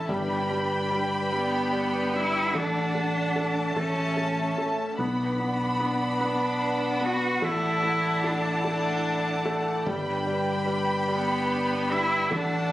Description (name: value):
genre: six-eight pop ballad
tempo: 49 BPM (dotted quarters)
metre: 6/8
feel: straight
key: unclear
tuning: A4 = 440 Hz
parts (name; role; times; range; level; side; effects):
- clear concert grand piano; accompaniment; 0.0-12.7 s; G3 to E4; -30 LUFS; left 1 dB; none
- warm studio string section; sustained chords; 0.0-12.7 s; C#4 to B5; -28 LUFS; equal; none
- fingered electric bass; bass; 0.0-12.7 s; G1 to B1; -33 LUFS; equal; none
- rich cello; melody; 1.3-12.7 s; B3 to F#4; -28 LUFS; right 1 dB; none
room: light reverb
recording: recorded on a phone in the room, studio reverb, compression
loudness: -24 LUFS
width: side -15 dB against mid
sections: 0.0-5.0 A section; 5.0-12.7 B section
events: none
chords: 0.1 G; 2.5 D/A; 3.8 A; 5.0 Bm; 7.4 Dadd9/A; 9.9 G